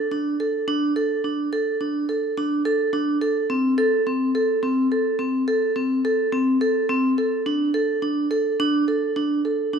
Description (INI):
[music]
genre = contemporary instrumental, contemporary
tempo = 106 BPM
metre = 7/4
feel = straight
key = unclear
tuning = A4 = 441 Hz
[part]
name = vibraphone with medium hard mallets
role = solo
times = 0.0-9.8 s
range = C4 to A4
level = -20 LUFS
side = right 1 dB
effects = none
[sound]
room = moderate recital hall reverb, RT60 1.8 s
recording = minimal, uncompressed stereo recording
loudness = -20 LUFS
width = side -6 dB against mid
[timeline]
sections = 0.0-9.8 A section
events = none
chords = none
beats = 0.12 0.68 1.25 1.81 2.38 2.94 | 3.51 4.07 4.64 5.20 5.77 6.33 6.90 | 7.47 8.03 8.60 9.17 9.73